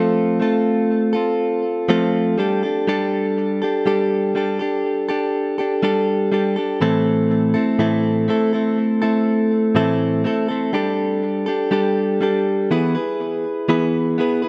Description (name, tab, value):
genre	pop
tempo	61 BPM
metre	4/4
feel	straight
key	A minor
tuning	A4 = 440 Hz
part	direct-recorded clean electric guitar	solo	0.0-14.5 s	A2 to B4	-19 LUFS	equal	spring reverb, tape echo
room	moderate small room reverb, RT60 0.5 s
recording	rough home demo mix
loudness	-19 LUFS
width	mono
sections	0.0-14.5 A section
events	none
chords	0.0 F; 2.4 Gsus2; 6.8 Am; 10.7 Gsus2; 12.7 E